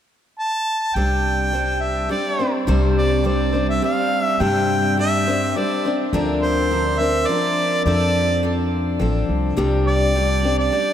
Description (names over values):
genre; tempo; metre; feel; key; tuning
folk; 104 BPM; 3/4; straight; C mixolydian; A4 = 440 Hz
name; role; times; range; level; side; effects
clear harmonica; melody; 0.4-10.9 s; C5 to A5; -21 LUFS; right 1 dB; none
picked steel-string acoustic guitar; accompaniment; 1.0-10.9 s; C3 to C5; -21 LUFS; left 1 dB; none
upright bass; bass; 1.0-10.7 s; A1 to G2; -22 LUFS; equal; none
room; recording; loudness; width
wet cathedral reverb, RT60 5.9 s; in a vast, echoing space; -17 LUFS; side -10 dB against mid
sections
1.0-2.7 A section; 2.7-10.9 B section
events
none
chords
0.0 N.C.; 1.0 Csus2; 6.1 Bbadd9/D; 7.9 F6; 9.6 Csus2